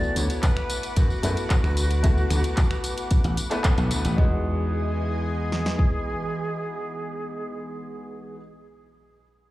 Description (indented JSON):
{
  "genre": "nu-disco, nu disco",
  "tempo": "112 BPM",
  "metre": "4/4",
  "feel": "straight",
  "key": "E major",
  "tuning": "A4 = 438 Hz",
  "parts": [
    { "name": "mellow hollow silver concert flute", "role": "melody", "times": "0.0-8.4 s", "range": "F#4 to D5", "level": "-33 LUFS", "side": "right 1 dB", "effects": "dub echo" },
    { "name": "clear grand piano", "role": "accompaniment", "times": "0.0-8.4 s", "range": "G#3 to B4", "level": "-32 LUFS", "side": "left 1 dB", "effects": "sidechain pumping" },
    { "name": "lush unison pad", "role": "sustained chords", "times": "0.1-8.4 s", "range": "E3 to D6", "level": "-36 LUFS", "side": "equal", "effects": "chorus, phaser, sidechain pumping" },
    { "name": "house drum kit", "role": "drums", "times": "0.0-4.2 s", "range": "finger snaps, handclaps, hi-hat, tambourine", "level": "-32 LUFS", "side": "equal", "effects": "none" },
    { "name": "dry thumbed slap bass", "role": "bass", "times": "0.2-5.7 s", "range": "A1 to F#2", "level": "-24 LUFS", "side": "equal", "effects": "none" },
    { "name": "house drum kit", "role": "drums", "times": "0.4-5.9 s", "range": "kick drum, snare drum", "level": "-21 LUFS", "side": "equal", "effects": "none" }
  ],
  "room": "little or no reverb",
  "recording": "played on a big sound system in a bare room, large studio reverb, faint mains hum",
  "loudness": "-22 LUFS",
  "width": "side -16 dB against mid",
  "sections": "0.0-4.2 A section; 4.2-8.5 B section",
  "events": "drop 0.0-4.2; band accent 3.6",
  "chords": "0.0 D6; 4.2 Emaj7",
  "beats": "0.43 0.97 1.50 | 2.04 2.57 3.11 3.65 | 4.18 4.72 5.25 5.79 | 6.32 6.86 7.39 7.93"
}